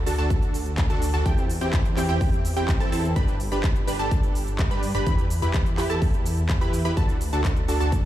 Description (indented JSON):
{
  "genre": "EDM, festival progressive house",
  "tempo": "126 BPM",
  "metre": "4/4",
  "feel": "straight",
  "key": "G major",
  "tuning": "A4 = 441 Hz",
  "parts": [
    { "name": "wide unison pluck", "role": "arpeggios", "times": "0.0-8.1 s", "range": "G5 to B5", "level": "-32 LUFS", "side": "right 1 dB", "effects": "analog chorus, sidechain pumping, dub echo" },
    { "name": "supersaw stab", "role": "riff", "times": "0.0-8.1 s", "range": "C4 to B4", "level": "-28 LUFS", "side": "right 1 dB", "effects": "sidechain pumping, dub echo" },
    { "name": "detuned saw bass", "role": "bass", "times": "0.0-8.1 s", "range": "G1 to G2", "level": "-26 LUFS", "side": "equal", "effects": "sidechain pumping" },
    { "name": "big-room dance drum kit", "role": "drums", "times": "0.1-8.0 s", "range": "handclaps, hi-hat, shaker", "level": "-35 LUFS", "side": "equal", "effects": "studio reverb" },
    { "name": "electronic kick drum", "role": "drums", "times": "0.3-8.0 s", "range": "none", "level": "-23 LUFS", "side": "equal", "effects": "studio reverb" }
  ],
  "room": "digital ambience",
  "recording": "played on a big sound system in a bare room, large studio reverb",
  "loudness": "-21 LUFS",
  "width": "side -13 dB against mid",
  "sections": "0.0-8.1 A section",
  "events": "none",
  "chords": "0.0 D; 1.3 C/E; 3.2 G; 5.1 Em; 7.0 D"
}